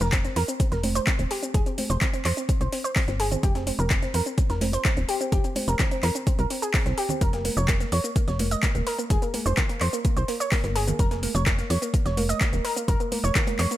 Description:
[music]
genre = progressive house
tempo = 127 BPM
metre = 4/4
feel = straight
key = F minor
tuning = A4 = 443 Hz
[part]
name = analog pluck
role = arpeggios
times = 0.0-13.8 s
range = Bb3 to Eb5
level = -28 LUFS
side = right 1 dB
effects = chorus, cassette tape, sidechain pumping, ping-pong delay
[part]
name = tight sequencer bass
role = bass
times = 0.0-13.7 s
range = Eb1 to F2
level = -26 LUFS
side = equal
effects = sidechain pumping
[part]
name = deep house drum kit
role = drums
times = 0.0-13.8 s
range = handclaps, hi-hat, shaker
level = -30 LUFS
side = left 1 dB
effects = overdrive, sidechain pumping on hats, studio reverb, sidechain pumping on perc, sidechain pumping on cymbals
[part]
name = breakbeat sampler-style drum kit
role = drums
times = 0.1-13.7 s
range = hi-hat, snare drum, tambourine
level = -40 LUFS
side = left 2 dB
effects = none
[part]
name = electronic kick drum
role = drums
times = 0.1-13.4 s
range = none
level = -24 LUFS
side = equal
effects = overdrive, studio reverb
[part]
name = congas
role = percussion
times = 0.8-13.6 s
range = none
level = -34 LUFS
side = right 2 dB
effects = sidechain pumping on perc
[sound]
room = little or no reverb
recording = none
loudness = -22 LUFS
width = side -14 dB against mid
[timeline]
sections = 0.0-13.8 A section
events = filter sweep on synth pluck 0.0-13.8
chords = 0.0 Fsus2; 7.2 Bb5

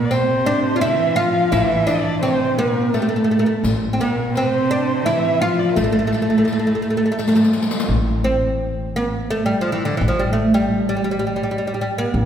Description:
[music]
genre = Persian modal ensemble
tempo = 85 BPM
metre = 3/4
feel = straight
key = A dastgah shur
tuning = A4 = 440 Hz
[part]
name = oud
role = melody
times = 0.0-12.3 s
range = D3 to F4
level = -18 LUFS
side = right 1 dB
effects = none
[part]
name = warm cello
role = second line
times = 0.0-7.5 s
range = A2 to F3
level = -23 LUFS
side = right 1 dB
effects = none
[part]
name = warm kamancheh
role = second line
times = 0.0-7.5 s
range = G4 to F5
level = -25 LUFS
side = left 2 dB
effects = none
[part]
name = riq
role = percussion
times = 0.1-7.9 s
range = none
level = -27 LUFS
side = left 3 dB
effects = none
[part]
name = upright bass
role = bass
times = 1.5-12.3 s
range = A1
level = -25 LUFS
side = equal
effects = none
[sound]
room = wet concert hall reverb, RT60 2.1 s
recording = recorded in a church or concert hall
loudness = -16 LUFS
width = side -9 dB against mid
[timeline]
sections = 0.0-7.9 A section; 7.9-12.3 B section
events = drum fill 7.2-7.9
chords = none

